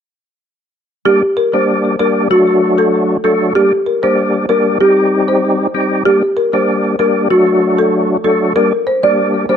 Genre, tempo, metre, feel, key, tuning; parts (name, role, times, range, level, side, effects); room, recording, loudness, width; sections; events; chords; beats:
dancehall; 96 BPM; 4/4; straight; G harmonic minor; A4 = 440 Hz
folk marimba with medium mallets; melody; 1.1-9.6 s; F#4 to D5; -13 LUFS; equal; digital delay
percussive tonewheel organ; accompaniment; 1.1-9.6 s; F#3 to G4; -14 LUFS; equal; overdrive, chorus vibrato, fast rotary speaker
moderate plate reverb, RT60 2.6 s; -11 LUFS; side -8 dB against mid
1.1-9.6 A section
1.1 Gm; 2.3 D; 3.6 Gm; 4.8 Cm; 6.1 Gm; 7.3 D; 8.6 Gm
| 1.06 1.68 2.31 2.93 | 3.56 4.18 4.81 5.43 | 6.06 6.68 7.31 7.93 | 8.56 9.18